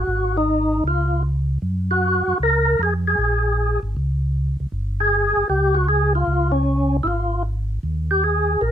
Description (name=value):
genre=soul jazz organ trio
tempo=155 BPM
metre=4/4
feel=swing 67% on 8ths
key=unclear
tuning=A4 = 437 Hz
part: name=percussive tonewheel organ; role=melody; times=0.0-8.7 s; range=Db4 to Bb4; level=-19 LUFS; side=equal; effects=slow rotary speaker, overdrive, chorus vibrato
part: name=mellow tonewheel organ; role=bass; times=0.0-8.7 s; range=G1 to Gb2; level=-21 LUFS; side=equal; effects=chorus vibrato, slow rotary speaker
room=light reverb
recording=minimal, uncompressed stereo recording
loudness=-18 LUFS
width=side -10 dB against mid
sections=0.0-8.7 A section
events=none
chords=0.1 Ab5; 0.9 Db; 1.6 Gbadd9; 4.7 Fmadd9/G (rootless); 6.3 Db; 7.8 Eb5